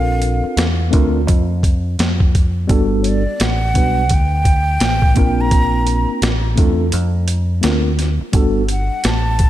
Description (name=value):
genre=hip hop, jazz-hop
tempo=85 BPM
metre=4/4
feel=swing 62% on 16ths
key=unclear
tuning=A4 = 444 Hz
part: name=breathy mellow silver concert flute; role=melody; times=0.0-9.5 s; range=C#5 to Bb5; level=-22 LUFS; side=right 2 dB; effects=analog delay
part: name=tine electric piano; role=accompaniment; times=0.0-8.6 s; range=G3 to B4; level=-20 LUFS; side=equal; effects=medium stereo tremolo
part: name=deep dub picked electric bass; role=bass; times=0.0-9.5 s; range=G1 to F2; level=-18 LUFS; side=equal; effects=none
part: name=boom bap sampler-style drum kit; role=drums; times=0.2-9.5 s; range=hi-hat, kick drum, snare drum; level=-16 LUFS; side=equal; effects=none
room=light reverb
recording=none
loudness=-14 LUFS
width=side -13 dB against mid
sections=0.0-9.5 A section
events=kick muted 6.9-8.3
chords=0.0 Bbmaj9; 2.7 Gmaj9; 5.2 Bbmaj9; 8.3 Gmaj9